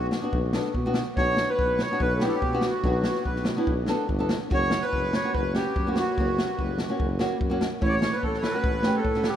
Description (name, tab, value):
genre	klezmer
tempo	144 BPM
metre	4/4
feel	straight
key	B minor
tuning	A4 = 439 Hz
part	mellow clarinet	melody	0.0-9.4 s	F#4 to C#5	-30 LUFS	left 1 dB	none
part	accordion	second line	0.0-9.4 s	F#4 to D5	-32 LUFS	right 3 dB	none
part	mellow tuba	bass	0.0-9.3 s	F#1 to B2	-30 LUFS	equal	none
part	nylon-string guitar	accompaniment	0.1-9.3 s	A3 to A4	-29 LUFS	equal	none
part	open jazz drum kit	drums	0.1-9.3 s	kick drum, snare drum	-28 LUFS	equal	none
room	wet cathedral reverb, RT60 6.2 s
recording	in a vast, echoing space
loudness	-23 LUFS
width	side -10 dB against mid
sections	0.0-9.4 A section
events	speeding up 0.0-9.4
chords	0.0 Bm; 4.5 F#; 7.8 A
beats	0.33 0.75 | 1.18 1.60 2.02 2.44 | 2.85 3.27 3.69 4.11 | 4.52 4.94 5.35 5.77 | 6.18 6.59 7.00 7.42 | 7.83 8.23 8.64 9.05